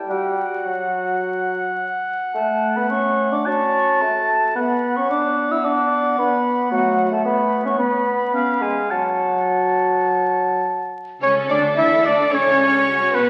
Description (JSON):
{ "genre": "classical, dramatic, fast romantic movement for symphony orchestra", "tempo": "103-113 BPM", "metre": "4/4", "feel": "rubato", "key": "F# minor", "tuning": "A4 = 436 Hz", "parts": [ { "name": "concert flute", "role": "second line", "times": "0.0-13.3 s", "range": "B4 to E6", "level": "-26 LUFS", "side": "equal", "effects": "none" }, { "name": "clear oboe", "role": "second line", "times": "0.1-13.3 s", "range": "B4 to A5", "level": "-24 LUFS", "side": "equal", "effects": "none" }, { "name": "mellow clarinet", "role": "second line", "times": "0.1-13.3 s", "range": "A3 to E5", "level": "-29 LUFS", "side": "equal", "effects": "none" }, { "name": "mellow bassoon", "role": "accompaniment", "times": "0.1-13.3 s", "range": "F#3 to E4", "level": "-25 LUFS", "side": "equal", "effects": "none" }, { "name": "rich chamber violin section", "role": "melody", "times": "11.2-13.3 s", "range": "B4 to E5", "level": "-26 LUFS", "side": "equal", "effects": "none" }, { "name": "rich symphonic violin section", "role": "second line", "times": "11.2-13.3 s", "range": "B3 to E4", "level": "-29 LUFS", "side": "equal", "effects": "none" }, { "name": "rich symphonic viola section", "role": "accompaniment", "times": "11.2-13.3 s", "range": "B3 to E4", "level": "-28 LUFS", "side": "equal", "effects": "none" }, { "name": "dark French horn section", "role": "sustained chords", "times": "11.2-13.3 s", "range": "B3 to E4", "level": "-28 LUFS", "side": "equal", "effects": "none" }, { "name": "rich studio double bass section", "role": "bass", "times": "11.2-13.2 s", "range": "B1 to E2", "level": "-35 LUFS", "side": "equal", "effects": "none" }, { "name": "rich symphonic cello section", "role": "bass", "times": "11.2-13.3 s", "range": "F#4 to A4", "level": "-32 LUFS", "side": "equal", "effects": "none" } ], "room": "wet recital hall reverb, RT60 1.6 s", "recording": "very old 78 rpm record, vinyl crackle", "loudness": "-19 LUFS", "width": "mono", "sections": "0.0-11.2 A section; 11.2-13.3 B section", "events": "none", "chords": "0.1 N.C.; 2.3 F#m/A; 3.5 F#m/C#; 4.6 Bm; 6.7 F#m; 7.8 N.C.; 8.3 C#; 8.9 F#m; 11.2 F#m/C#", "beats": "| 0.09 0.65 1.22 1.78 | 2.34 2.90 3.45 4.01 | 4.55 5.09 5.64 6.18 | 6.71 7.25 7.79 8.34 | 8.91 9.49 10.07 10.65 | 11.22 11.78 12.32 12.87" }